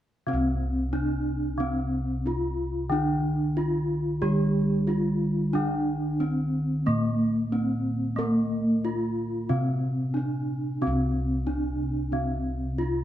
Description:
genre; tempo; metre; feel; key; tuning
Javanese gamelan; 91 BPM; 4/4; straight; C slendro; A4 = 440 Hz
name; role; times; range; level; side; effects
gamelan-type bronze metallophone; melody; 0.3-13.0 s; Bb3-40c to G4+20c; -28 LUFS; equal; none
gamelan-type bronze metallophone; accompaniment; 0.3-13.0 s; C3 to Bb3-40c; -29 LUFS; right 1 dB; none
gamelan-type bossed gongs; bass; 0.3-13.0 s; C2 to Bb4-40c; -30 LUFS; equal; none
room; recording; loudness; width
moderate recital hall reverb, RT60 1.4 s; dark, warm production; -24 LUFS; side -12 dB against mid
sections
0.3-13.0 A section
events
none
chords
none

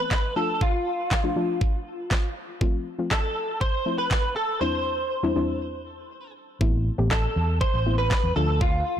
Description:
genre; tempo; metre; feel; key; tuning
dance-pop; 120 BPM; 4/4; straight; unclear; A4 = 441 Hz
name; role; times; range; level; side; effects
direct-recorded clean electric guitar; melody; 0.0-9.0 s; F4 to C5; -27 LUFS; equal; ensemble chorus, ping-pong delay
soft round pluck; accompaniment; 0.0-9.0 s; E2 to G4; -29 LUFS; left 3 dB; chorus, sidechain pumping
pop drum kit; drums; 0.1-8.7 s; handclaps, kick drum, snare drum; -25 LUFS; equal; none
vintage muted fingered electric bass; bass; 6.6-8.8 s; A1 to E2; -24 LUFS; equal; sidechain pumping
room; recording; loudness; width
little or no reverb; blown-out, overdriven recording, overdrive; -22 LUFS; side -10 dB against mid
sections
0.0-9.0 A section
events
break 4.6-6.6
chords
0.4 Dm; 2.6 F; 4.6 Cadd9/E; 6.6 Amadd9; 8.4 Dm

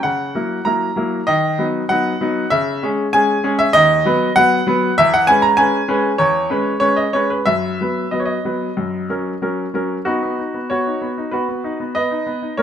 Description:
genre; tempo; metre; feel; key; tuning
classical-period piano sonatina; 96 BPM; 4/4; uneven beats, rubato; B major; A4 = 440 Hz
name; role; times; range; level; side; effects
bright baby grand piano; solo; 0.0-12.6 s; D#2 to A#5; -15 LUFS; equal; none
room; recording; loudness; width
moderate large studio reverb, RT60 1.2 s; minimal, uncompressed stereo recording; -15 LUFS; side -9 dB against mid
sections
0.0-10.1 A section; 10.1-12.6 B section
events
none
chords
0.0 F#7/C#; 1.3 B/D#; 2.5 C#m; 3.7 B/D#; 5.0 C#m7/E; 7.5 B5/F#; 8.8 F#; 10.1 B

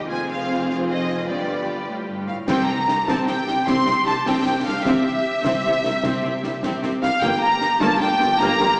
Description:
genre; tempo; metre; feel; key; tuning
cinematic, heroic adventure film score; 101 BPM (dotted quarters); 12/8; straight; unclear; A4 = 440 Hz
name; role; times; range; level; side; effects
warm symphonic violin section; second line; 0.0-8.8 s; G4 to C6; -22 LUFS; equal; none
rich symphonic viola section; accompaniment; 0.0-8.8 s; G3 to G4; -26 LUFS; equal; none
rich symphonic cello section; bass; 0.0-8.7 s; F2 to C3; -29 LUFS; equal; none
rich symphonic double bass section; bass; 0.0-8.7 s; F1 to C2; -31 LUFS; equal; none
rich symphonic violin section; melody; 0.1-8.8 s; D5 to C6; -27 LUFS; equal; none
mellow tuba; bass; 2.5-8.7 s; G1 to C2; -27 LUFS; equal; none
concert snare drum, clash cymbals and concert bass drum; drums; 2.5-8.8 s; none; -28 LUFS; equal; none
timpani; percussion; 2.5-3.0 s; C3; -32 LUFS; equal; none
room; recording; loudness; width
wet scoring stage reverb, RT60 1.8 s; heard from further back in the room, small speaker sound; -18 LUFS; side -36 dB against mid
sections
0.0-2.5 A section; 2.5-8.8 A section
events
none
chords
0.1 Fm; 1.3 G7; 2.5 C; 7.2 Gm

